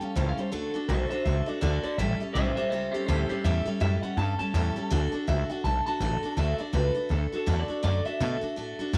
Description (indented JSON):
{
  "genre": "rockabilly",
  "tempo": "164 BPM",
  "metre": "4/4",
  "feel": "swing 60% on 8ths",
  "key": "D major",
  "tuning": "A4 = 441 Hz",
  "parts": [
    { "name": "electric guitar through a small old amp", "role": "melody", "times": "0.0-8.5 s", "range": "G4 to A5", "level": "-34 LUFS", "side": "equal", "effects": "phaser, tape echo" },
    { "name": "picked steel-string acoustic guitar", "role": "accompaniment", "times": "0.0-9.0 s", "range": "A2 to A4", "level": "-34 LUFS", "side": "equal", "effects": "none" },
    { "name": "upright bass", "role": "bass", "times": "0.0-9.0 s", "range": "A1 to B2", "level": "-30 LUFS", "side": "equal", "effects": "none" }
  ],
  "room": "light reverb, small room ambience",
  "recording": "none",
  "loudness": "-28 LUFS",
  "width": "mono",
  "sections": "0.0-6.4 A section; 6.4-9.0 B section",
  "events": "clean electric guitar solo 0.0-6.4",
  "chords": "0.0 A7; 0.5 D; 2.0 A7; 4.9 D"
}